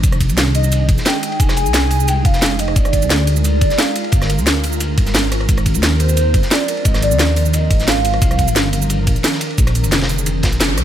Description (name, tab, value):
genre	liquid drum and bass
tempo	176 BPM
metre	4/4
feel	straight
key	F dorian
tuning	A4 = 439 Hz
part	ethereal airy pad	sustained chords	0.0-10.8 s	D3 to Bb4	-25 LUFS	equal	ensemble chorus, built-in reverb, sidechain pumping
part	dark detuned saw bass	bass	0.0-10.8 s	Eb1 to Eb2	-17 LUFS	equal	none
part	crunchy breakbeat drum kit	drums	0.0-10.7 s	ride cymbal, snare drum	-25 LUFS	equal	high-pass filter on cymbals, high-pass filter on snare, high-pass filter on room
part	drum and bass drum kit	drums	0.0-10.8 s	cabasa, hi-hat, ride cymbal, rim click, snare drum	-19 LUFS	right 1 dB	none
part	electronic kick drum	drums	0.0-10.5 s	none	-16 LUFS	equal	none
part	hollow clarinet-like synth lead	melody	0.5-8.9 s	C5 to Ab5	-21 LUFS	right 1 dB	lush chorus, ping-pong delay
room	little or no reverb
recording	none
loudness	-13 LUFS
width	side -11 dB against mid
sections	0.0-10.8 A section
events	band accent 10.6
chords	0.0 Fm9; 2.8 Gm7; 5.3 Ab69; 8.2 Cm9; 9.6 Bb9